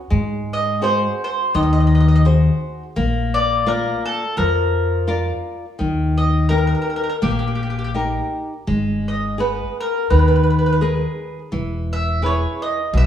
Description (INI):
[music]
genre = italian folk, Italian serenade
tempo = 84 BPM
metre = 4/4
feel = swing 54% on 8ths, rubato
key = G# minor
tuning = A4 = 440 Hz
[part]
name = flamenco guitar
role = accompaniment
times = 0.1-13.1 s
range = B2 to D5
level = -23 LUFS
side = left 1 dB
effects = none
[part]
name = upright bass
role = bass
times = 0.1-13.1 s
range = E1 to G#2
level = -18 LUFS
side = left 1 dB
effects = none
[part]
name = mandolin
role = melody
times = 0.5-13.1 s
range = G4 to E5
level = -21 LUFS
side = equal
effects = none
[sound]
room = wet recital hall reverb, RT60 1.4 s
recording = none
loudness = -17 LUFS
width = side -10 dB against mid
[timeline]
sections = 0.0-13.1 A section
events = none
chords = 0.1 G#7; 3.0 A#; 5.8 D#; 8.7 G#madd9; 11.5 E